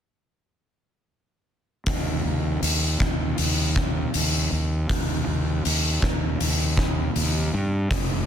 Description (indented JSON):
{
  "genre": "quiet-loud alternative rock",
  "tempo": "79 BPM",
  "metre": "4/4",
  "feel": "straight",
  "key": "unclear",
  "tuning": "A4 = 441 Hz",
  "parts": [
    { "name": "fuzz fingered electric bass", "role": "bass", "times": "1.9-8.2 s", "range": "F1 to G2", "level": "-25 LUFS", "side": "equal", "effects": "overdrive" },
    { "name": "oversized low-tuned drum kit", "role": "drums", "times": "1.9-8.1 s", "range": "hi-hat, kick drum", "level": "-24 LUFS", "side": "equal", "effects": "none" }
  ],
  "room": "little or no reverb",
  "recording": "dense, heavily limited modern master",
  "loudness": "-21 LUFS",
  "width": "side -9 dB against mid",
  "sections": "1.9-8.3 A section",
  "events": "none",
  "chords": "none"
}